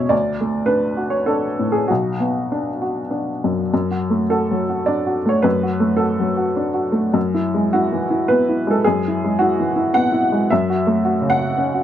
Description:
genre	neoclassical minimalist piano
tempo	96-112 BPM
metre	3/4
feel	rubato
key	unclear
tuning	A4 = 440 Hz
part	clear upright piano	solo	0.0-11.8 s	B1 to G#5	-16 LUFS	equal	none
room	light reverb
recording	dark, warm production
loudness	-16 LUFS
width	side -10 dB against mid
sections	0.0-3.7 A section; 3.7-11.8 B section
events	none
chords	0.1 D; 1.9 Bm; 3.7 D/F#; 7.2 E/F#; 10.5 F#m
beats	| 0.12 0.69 1.28 | 1.90 2.51 3.12 | 3.72 4.30 4.88 | 5.45 6.02 6.59 | 7.16 7.72 8.28 | 8.85 9.40 9.95 | 10.50 11.04 11.59

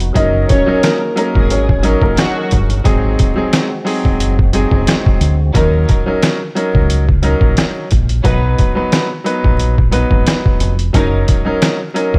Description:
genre	hip hop, boom-bap hip-hop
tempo	89 BPM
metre	4/4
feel	swing 55% on 16ths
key	Eb minor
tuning	A4 = 441 Hz
part	percussive tonewheel organ	sustained chords	0.0-5.5 s	Gb3 to Bb4	-29 LUFS	equal	none
part	deep dub fingered electric bass	bass	0.0-12.2 s	F1 to Eb2	-18 LUFS	equal	none
part	trip hop sampler-style drum kit	drums	0.0-12.2 s	hi-hat, kick drum, rim click, snare drum	-17 LUFS	equal	none
part	clear concert grand piano	accompaniment	0.1-12.2 s	Gb3 to B4	-20 LUFS	equal	high-pass filter, low-pass filter
part	dark upright piano	melody	0.2-2.2 s	Bb3 to Eb5	-20 LUFS	equal	high-pass filter, low-pass filter, digital delay
part	warm studio string section	stabs	0.5-11.2 s	Gb3 to Db5	-26 LUFS	equal	high-pass filter, low-pass filter, digital delay
room	small room ambience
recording	vinyl crackle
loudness	-14 LUFS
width	mono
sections	0.0-5.5 A section; 5.5-12.2 B section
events	none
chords	0.2 Gb6; 2.9 Ab7; 5.5 Ebm7; 8.2 B; 10.9 Gb6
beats	| 0.15 0.83 1.50 2.18 | 2.85 3.52 4.20 4.87 | 5.55 6.22 6.90 7.57 | 8.24 8.92 9.59 10.27 | 10.94 11.62

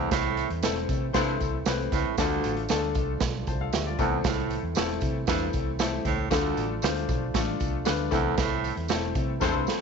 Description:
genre	uptempo 1960s-style soul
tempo	116 BPM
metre	4/4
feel	straight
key	A minor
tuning	A4 = 440 Hz
part	bright grand piano	accompaniment	0.0-9.8 s	A3 to A5	-30 LUFS	left 13 dB	none
part	tonewheel organ	sustained chords	0.0-9.8 s	E3 to F4	-37 LUFS	right 14 dB	stopped rotary speaker
part	clear baritone saxophone	riff	0.0-9.6 s	D2 to A2	-31 LUFS	right 11 dB	none
part	vintage muted fingered electric bass	bass	0.0-9.7 s	E1 to C3	-32 LUFS	left 1 dB	none
part	raw garage drum kit	drums	0.1-9.8 s	hi-hat, kick drum, snare drum	-29 LUFS	right 3 dB	none
part	tambourine	percussion	0.1-9.8 s	none	-42 LUFS	right 14 dB	none
part	warm horn section	second line	1.1-1.5, 9.4-9.8 s	E4 to C5	-30 LUFS	left 15 dB	none
room	light reverb, small room ambience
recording	1960s-style stereo with parts hard left and right, nothing above 7.8 kHz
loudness	-24 LUFS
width	side -6 dB against mid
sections	0.0-9.8 A section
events	band accent 0.1-2.2, 8.4-9.8; grand piano fill 5.5-6.3; drum fill 9.4-9.8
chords	0.0 Am; 2.2 Dm; 4.0 Am; 6.3 Dm; 8.1 Am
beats	| 0.12 0.63 1.15 1.67 | 2.18 2.70 3.21 3.73 | 4.25 4.76 5.28 5.80 | 6.31 6.83 7.34 7.86 | 8.38 8.89 9.41

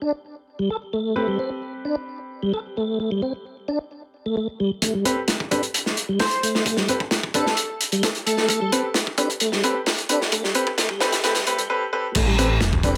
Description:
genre	breakbeat, breaks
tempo	131 BPM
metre	4/4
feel	straight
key	A minor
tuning	A4 = 440 Hz
part	mellow tonewheel organ	riff	0.0-12.9 s	G3 to A4	-27 LUFS	equal	chorus vibrato, fast rotary speaker, low-pass filter, digital delay
part	warm concert grand piano	stabs	0.0-12.9 s	C4 to B4	-28 LUFS	equal	digital delay
part	crunchy breakbeat drum kit	drums	4.8-13.0 s	crash cymbal, hi-hat, kick drum, snare drum	-24 LUFS	equal	high-pass filter on kick, high-pass filter on hats, high-pass filter on cymbals, high-pass filter on snare, high-pass filter on room
part	airy dreamy lead	melody	6.2-8.7 s	A4 to C5	-29 LUFS	equal	chorus, old record sound, digital delay
part	phased detuned saw bass	bass	12.2-13.0 s	E1 to A1	-24 LUFS	equal	phaser
room	light reverb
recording	high-pass filter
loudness	-23 LUFS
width	mono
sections	0.0-4.8 A section; 4.8-12.2 B section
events	filter sweep on grand piano 0.0-4.8; build-up 4.8-12.2; filter sweep on tonewheel organ 4.8-12.2; break 11.7-12.2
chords	0.0 Am9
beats	0.25 0.70 | 1.16 1.62 2.08 2.54 | 3.00 3.45 3.91 4.37 | 4.83 5.29 5.74 6.20 | 6.66 7.12 7.58 8.03 | 8.49 8.95 9.41 9.87 | 10.32 10.78 11.24 11.70 | 12.15 12.61

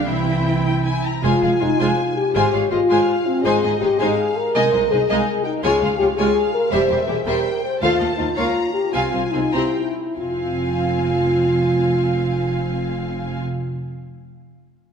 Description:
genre	classical, dramatic, fast romantic movement for symphony orchestra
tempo	91-111 BPM (dotted quarters)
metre	6/8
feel	rubato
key	F minor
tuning	A4 = 441 Hz
part	warm studio violin section	melody	0.0-13.4 s	C5 to Bb5	-30 LUFS	left 4 dB	none
part	rich symphonic violin section	second line	0.0-13.4 s	Eb4 to Bb5	-26 LUFS	left 2 dB	none
part	rich symphonic viola section	accompaniment	0.0-13.4 s	G3 to G4	-26 LUFS	right 3 dB	none
part	warm French horn section	sustained chords	0.0-13.4 s	E3 to C5	-20 LUFS	left 2 dB	none
part	warm symphonic double bass section	bass	0.0-13.4 s	E1 to Eb2	-26 LUFS	right 3 dB	none
part	warm symphonic cello section	bass	0.1-13.4 s	C2 to E4	-30 LUFS	right 3 dB	none
room	wet concert hall reverb, RT60 2.3 s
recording	minimal, uncompressed stereo recording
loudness	-17 LUFS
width	side -6 dB against mid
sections	0.0-1.2 A section; 1.2-10.2 B section; 10.2-12.6 C section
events	slowing down 7.3-10.2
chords	0.1 C; 1.2 Fm; 2.4 Fm/Ab; 3.5 Ab; 4.6 Ab/C; 5.6 Db; 6.7 C/E; 7.8 F7; 8.4 Bbm; 8.9 Fm/C; 9.5 C7; 10.2 Fm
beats	| 0.08 0.66 | 1.24 1.80 | 2.36 2.91 | 3.45 4.00 | 4.55 5.10 | 5.64 6.19 | 6.73 7.27 | 7.82 8.37 | 8.94 9.54 | 10.18 10.79 | 11.41 12.03

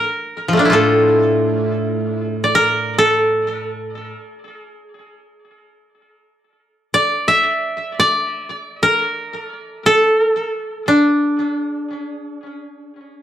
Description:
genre	japanese traditional, Japanese chamber music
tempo	free time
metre	none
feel	none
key	D hirajoshi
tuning	A4 = 440 Hz
part	koto	melody	0.0-13.2 s	F3 to E5	-16 LUFS	equal	plate reverb, tape echo
part	koto	accompaniment	0.7-4.1 s	A2	-20 LUFS	left 2 dB	plate reverb
room	wet studio reverb, RT60 0.5 s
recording	dry, gritty hardware recording, transformer saturation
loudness	-14 LUFS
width	side -11 dB against mid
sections	0.0-13.2 A section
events	none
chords	none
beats	free time

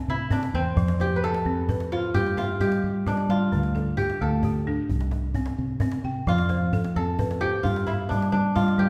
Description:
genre	west african traditional, West African string and xylophone music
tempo	87 BPM (dotted quarters)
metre	12/8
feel	straight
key	F lydian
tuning	A4 = 440 Hz
part	kora	melody	0.0-8.9 s	C4 to B4	-30 LUFS	equal	none
part	balafon	arpeggios	0.0-8.9 s	D3 to A5	-30 LUFS	equal	none
part	fingered electric bass	bass	0.1-8.9 s	C2 to G3	-30 LUFS	equal	none
part	djembe	percussion	0.2-8.8 s	none	-33 LUFS	equal	none
room	wet recital hall reverb, RT60 1.6 s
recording	heard from further back in the room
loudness	-25 LUFS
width	mono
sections	0.0-8.9 A section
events	none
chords	0.0 C; 0.8 F; 2.1 G; 3.5 Dm; 4.9 C5; 6.3 F; 7.6 G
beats	0.08 | 0.77 1.46 2.15 2.83 | 3.52 4.21 4.89 5.58 | 6.27 6.95 7.64 8.33

